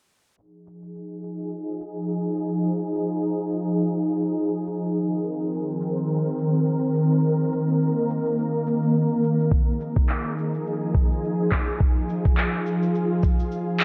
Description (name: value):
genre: organic downtempo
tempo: 105 BPM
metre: 4/4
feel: swing 57% on 16ths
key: F minor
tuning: A4 = 440 Hz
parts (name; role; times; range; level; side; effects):
- ethereal airy pad; sustained chords; 0.9-13.8 s; Eb3 to Bb4; -25 LUFS; equal; ensemble chorus, built-in reverb, sidechain pumping
- electronic cabasa and handclaps; drums; 0.4-13.8 s; none; -30 LUFS; equal; overdrive
- electronic kick drum; drums; 9.5-13.4 s; none; -23 LUFS; equal; none
room: wet lush hall reverb, RT60 2.9 s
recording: dark, warm production, low-pass filter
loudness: -24 LUFS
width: mono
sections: 0.4-13.8 A section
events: filter sweep on ambient pad 0.4-13.8; filter sweep 0.4-13.8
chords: 0.4 Fm7; 4.9 Cm7; 9.5 Fm7